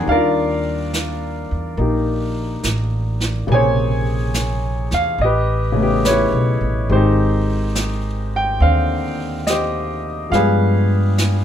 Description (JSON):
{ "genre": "jazz ballad", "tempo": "70 BPM", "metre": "4/4", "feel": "swing 69% on 8ths", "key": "Eb major", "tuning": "A4 = 439 Hz", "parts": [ { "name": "clear concert grand piano", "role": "accompaniment", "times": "0.0-11.4 s", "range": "C3 to Ab5", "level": "-19 LUFS", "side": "left 1 dB", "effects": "none" }, { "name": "upright bass", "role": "bass", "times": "0.0-11.4 s", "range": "Ab1 to G2", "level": "-20 LUFS", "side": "right 1 dB", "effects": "none" }, { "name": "jazz brush drum kit", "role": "drums", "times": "0.1-11.4 s", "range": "brushed snare drum, hi-hat, snare drum", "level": "-26 LUFS", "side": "right 2 dB", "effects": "none" } ], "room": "moderate studio reverb, RT60 0.8 s", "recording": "none", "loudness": "-16 LUFS", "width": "side -10 dB against mid", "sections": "0.1-11.4 A section", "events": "none", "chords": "0.1 Ebmaj9; 3.5 Bbm9; 5.2 A9; 6.9 Abmaj7; 10.3 G7b9" }